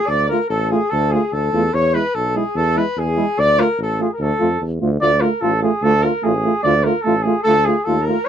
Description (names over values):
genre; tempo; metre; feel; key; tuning
balkan folk; 147 BPM; 2/4; swing 54% on 16ths; D hungarian minor; A4 = 438 Hz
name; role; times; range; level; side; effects
mellow cornet; melody; 0.0-8.3 s; G#4 to D5; -19 LUFS; right 2 dB; none
warm alto saxophone; second line; 0.0-4.6, 7.4-8.3 s; G#4 to D5; -24 LUFS; left 9 dB; none
warm tuba; bass; 0.1-8.1 s; A1 to F2; -21 LUFS; equal; none
warm euphonium; accompaniment; 0.3-8.2 s; G#3 to A3; -22 LUFS; right 8 dB; none
warm trombone; accompaniment; 0.3-8.2 s; E4 to F4; -22 LUFS; left 5 dB; none
room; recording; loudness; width
light reverb; dry, close 1970s-style studio recording; -15 LUFS; side -9 dB against mid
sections
0.0-5.0 A section; 5.0-8.3 A section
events
none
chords
0.0 Dm; 1.7 E; 3.4 Dm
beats
| 0.09 0.50 | 0.91 1.32 | 1.73 2.14 | 2.56 2.96 | 3.38 3.79 | 4.19 4.60 | 5.01 5.42 | 5.83 6.24 | 6.65 7.05 | 7.46 7.87 | 8.28